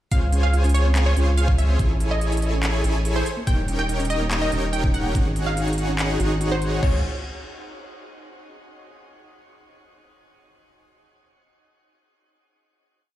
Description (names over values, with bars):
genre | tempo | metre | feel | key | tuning
future bass | 143 BPM | 4/4 | half-time | Db major | A4 = 440 Hz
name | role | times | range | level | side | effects
wide unison pluck | melody | 0.1-7.0 s | C5 to G5 | -30 LUFS | right 1 dB | auto-pan, sidechain pumping, digital delay
thumb-piano-like synth pluck | arpeggios | 0.1-7.0 s | Bb3 to Db5 | -33 LUFS | right 3 dB | chorus, sidechain pumping, digital delay
supersaw chords | riff | 0.1-7.0 s | Eb4 to Ab5 | -28 LUFS | equal | sidechain pumping
saturated sub bass | bass | 0.1-7.0 s | Eb1 to Db2 | -22 LUFS | equal | sidechain pumping
big-room dance drum kit | drums | 0.1-6.9 s | crash cymbal, handclaps, hi-hat | -32 LUFS | equal | none
electronic kick drum | drums | 0.1-6.9 s | none | -21 LUFS | equal | overdrive
room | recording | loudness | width
little or no reverb | played on a big sound system in a bare room, stone room reverb | -19 LUFS | side -14 dB against mid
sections
0.1-6.8 drop; 6.8-8.5 final chord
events
drop 0.1-6.8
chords
0.1 Dbmaj7; 1.8 Amaj7; 3.3 Eb7; 5.2 Ab7sus4; 6.8 Dbmaj7